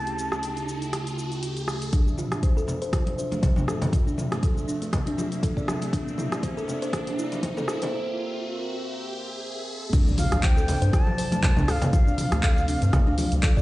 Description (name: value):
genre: afro house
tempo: 120 BPM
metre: 4/4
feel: swing 56% on 16ths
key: D minor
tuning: A4 = 438 Hz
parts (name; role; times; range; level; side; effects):
- expressive synth lead; melody; 0.0-1.4, 10.2-13.6 s; F5 to A5; -32 LUFS; left 1 dB; chorus, tape echo
- warm analog pad; sustained chords; 0.0-13.6 s; D2 to E5; -33 LUFS; right 2 dB; chorus, sidechain pumping
- riser and impact; sound effects; 0.0-11.9 s; none; -35 LUFS; equal; none
- deep house drum kit; drums; 0.1-13.6 s; crash cymbal, handclaps, hi-hat, rim click, shaker, toms; -31 LUFS; equal; none
- buzzing kalimba; arpeggios; 1.9-13.6 s; A3 to D5; -32 LUFS; left 1 dB; sidechain pumping, low-pass filter, tape echo
- round analog bass; bass; 1.9-13.4 s; C2 to G2; -25 LUFS; equal; sidechain pumping, high-pass filter
- electronic kick drum; drums; 1.9-13.6 s; none; -22 LUFS; equal; none
- congas; percussion; 1.9-13.5 s; none; -31 LUFS; equal; none
room: light reverb, digital ambience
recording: played on a big sound system in a bare room, large studio reverb, high-pass filter, nothing above 10.3 kHz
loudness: -23 LUFS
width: side -18 dB against mid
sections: 0.0-1.9 A section; 1.9-9.9 B section; 9.9-13.6 C section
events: riser 0.0-1.9, 1.9-9.9; filter sweep on analog synth pad 0.0-1.9; build-up 1.9-9.9; filter sweep 1.9-9.9; break 7.9-9.9; drop 9.9-13.6; impact 9.9-11.9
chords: 0.0 A7/D; 1.9 Dm9; 5.9 C9; 9.9 Dm7